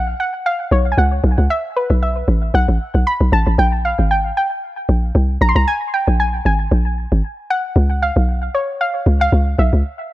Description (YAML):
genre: amapiano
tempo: 115 BPM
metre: 4/4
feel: swing 55% on 16ths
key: unclear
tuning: A4 = 440 Hz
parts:
  - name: soft round pluck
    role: melody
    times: 0.0-10.1 s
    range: B4 to C6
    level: -19 LUFS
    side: equal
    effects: chorus, analog delay
  - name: hollow log drum bass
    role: bass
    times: 0.0-9.8 s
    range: Ab1 to Db2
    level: -14 LUFS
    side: equal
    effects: none
room: little or no reverb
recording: echo-heavy mix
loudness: -14 LUFS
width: side -16 dB against mid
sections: 0.0-10.1 A section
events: none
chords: 0.0 Db7sus4; 1.5 B7sus4; 3.6 N.C.; 7.8 Db7#9/Cb